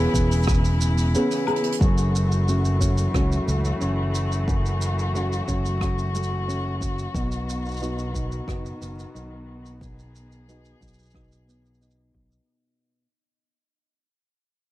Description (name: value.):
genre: folktronica.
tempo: 90 BPM.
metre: 4/4.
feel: straight.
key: F# dorian.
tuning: A4 = 439 Hz.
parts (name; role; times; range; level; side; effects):
muted string quartet; sustained chords; 0.0-12.5 s; C#3 to G#4; -30 LUFS; left 2 dB; plate reverb.
nylon-string guitar; arpeggios; 0.0-13.1 s; F#2 to G#4; -27 LUFS; equal; low-pass filter, ping-pong delay, plate reverb.
fingered electric bass; bass; 0.0-12.4 s; E1 to C#2; -24 LUFS; equal; none.
electronic kick drum; drums; 0.1-12.3 s; none; -25 LUFS; equal; none.
jazz brush drum kit; drums; 0.1-12.4 s; hi-hat, rim click, shaker, woodblock; -34 LUFS; right 1 dB; none.
room: light reverb.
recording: dark, warm production.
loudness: -21 LUFS.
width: side -16 dB against mid.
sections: 0.0-1.8 A section; 1.8-12.5 B section.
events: break 1.1-1.8; drum fill 1.5-1.8; fade-out 1.8-12.5; filter sweep on fingered electric bass 1.8-12.5; filter sweep on nylon-string guitar 1.8-12.5.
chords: 0.0 C#m7/E; 1.8 F#m7; 7.1 B.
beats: 0.48 1.14 | 1.81 2.48 3.14 3.81 | 4.48 5.14 5.81 6.48 | 7.14 7.81 8.48 9.14 | 9.81 10.48 11.14 11.81.